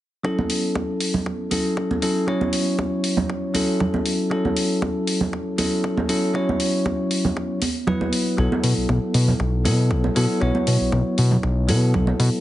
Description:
nu-disco, nu disco; 118 BPM; 4/4; swing 54% on 16ths; F# minor; A4 = 440 Hz
bell-like tine electric piano; accompaniment; 0.2-12.4 s; F#3 to C#5; -22 LUFS; equal; sidechain pumping, ping-pong delay
electronic kick drum; drums; 0.2-12.1 s; -30 LUFS; equal; high-pass filter on kick, studio ambience
congas; percussion; 0.4-12.2 s; -27 LUFS; right 3 dB
electronic hi-hat; drums; 0.5-12.3 s; -28 LUFS; left 2 dB; studio ambience
fat analog bass; bass; 8.4-12.3 s; B1 to B2; -19 LUFS; equal
light reverb; heavily compressed radio sound, multiband compression, nothing above 10.5 kHz; -19 LUFS; side -14 dB against mid
0.2-12.4 A section
0.2 F#m7; 8.1 B7sus4

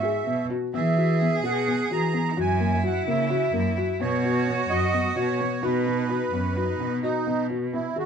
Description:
contemporary instrumental, chamber music in an uneven meter; 257 BPM (eighths); 7/8; straight; B major; A4 = 440 Hz
accordion; melody; 0.0-8.1 s; D#4 to A#5; -28 LUFS; right 5 dB; light tremolo tuning
bright cello; second line; 0.0-7.1 s; C#4 to G#4; -30 LUFS; right 3 dB
felt-muted upright piano; arpeggios; 0.0-8.1 s; A#3 to G#4; -28 LUFS; left 8 dB
rich cello; bass; 0.0-8.1 s; F#2 to E3; -26 LUFS; right 2 dB
moderate studio reverb, RT60 0.5 s; dark, warm production; -22 LUFS; side -7 dB against mid
0.0-7.3 A section
0.0 C#m7 (rootless); 0.7 Eadd9; 2.4 F#7; 4.0 B; 7.3 G#m7/B

